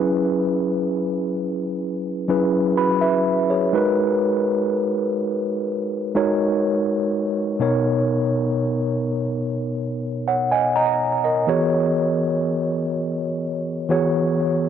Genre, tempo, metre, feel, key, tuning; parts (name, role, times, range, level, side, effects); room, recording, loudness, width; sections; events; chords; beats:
R&B; 62 BPM; 4/4; straight; G# minor; A4 = 441 Hz
mellow tine electric piano; solo; 0.0-14.7 s; B2 to B5; -19 LUFS; equal; medium stereo tremolo, analog delay
light reverb, digital ambience; dry, gritty hardware recording; -19 LUFS; side -8 dB against mid
0.0-14.7 A section
tine electric piano fill 2.3-3.7
0.0 F#7sus4; 3.7 G#m7; 7.6 Bmaj7; 11.5 E6
0.83 1.80 2.77 | 3.74 4.71 5.67 6.64 | 7.61 8.58 9.54 10.51 | 11.48 12.45 13.41 14.38